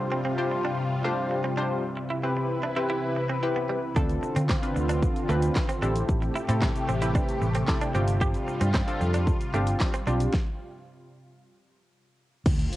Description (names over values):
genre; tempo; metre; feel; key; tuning
dance-pop; 113 BPM; 4/4; straight; unclear; A4 = 442 Hz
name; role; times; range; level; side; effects
funky polysynth comp; accompaniment; 0.0-10.3 s; C4 to C5; -30 LUFS; left 1 dB; chorus, sidechain pumping, cassette tape
lush unison pad; sustained chords; 0.0-12.8 s; C3 to B4; -30 LUFS; equal; chorus, phaser, sidechain pumping, cassette tape
direct-recorded clean electric guitar; riff; 0.1-10.1 s; G3 to G4; -34 LUFS; right 3 dB; lush chorus, cassette tape
vintage muted fingered electric bass; bass; 4.0-12.7 s; G1 to D3; -26 LUFS; equal; sidechain pumping
pop drum kit; drums; 4.0-12.8 s; crash cymbal, handclaps, hi-hat, kick drum, shaker, snare drum; -27 LUFS; equal; cassette tape
impact; sound effects; 12.5-12.8 s; none; -34 LUFS; equal; none
room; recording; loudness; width
light reverb, digital ambience; home recording on cassette; -24 LUFS; side -15 dB against mid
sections
0.0-12.5 A section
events
stop 10.3-12.5; impact 12.5-12.8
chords
0.0 G7sus4; 1.8 Cmaj7; 4.0 Dm7; 5.8 Am7; 7.9 G7sus4; 10.3 N.C.